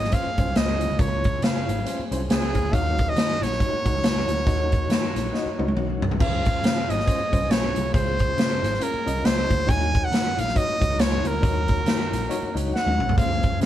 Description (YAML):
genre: uptempo 1960s-style soul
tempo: 138 BPM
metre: 4/4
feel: swing 59% on 8ths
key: Db major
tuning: A4 = 438 Hz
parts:
  - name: brilliant trumpet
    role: melody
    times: 0.0-13.7 s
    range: Ab4 to Ab5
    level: -26 LUFS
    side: right 1 dB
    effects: none
  - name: tonewheel organ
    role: sustained chords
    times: 0.0-13.7 s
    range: Eb3 to Ab4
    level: -38 LUFS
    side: equal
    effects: none
  - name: vintage muted picked electric bass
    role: bass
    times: 0.0-13.7 s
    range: Ab1 to Eb3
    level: -28 LUFS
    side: right 1 dB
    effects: none
  - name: swinging big-band drum kit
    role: drums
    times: 0.0-13.7 s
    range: crash cymbal, hi-hat, kick drum, snare drum, toms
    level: -23 LUFS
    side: equal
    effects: none
  - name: congas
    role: percussion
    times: 0.0-13.7 s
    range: none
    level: -38 LUFS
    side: left 2 dB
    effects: none
  - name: overdriven reed electric piano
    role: accompaniment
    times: 0.1-13.7 s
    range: Db3 to Eb5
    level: -32 LUFS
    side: left 3 dB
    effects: fast tremolo
room: light reverb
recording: band playing live in one room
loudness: -20 LUFS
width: side -12 dB against mid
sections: 0.0-6.2 A section; 6.2-13.7 A section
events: drum fill 5.3-6.2, 12.7-13.2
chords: 0.0 Dbmaj7; 2.7 Ebm7; 6.2 Dbmaj7; 9.7 Ebm7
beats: 0.13 0.56 | 0.99 1.43 1.86 2.29 | 2.73 3.16 3.60 4.03 | 4.46 4.90 5.33 5.77 | 6.20 6.64 7.07 7.51 | 7.94 8.38 8.81 9.25 | 9.69 10.12 10.56 10.99 | 11.43 11.87 12.30 12.74 | 13.17 13.61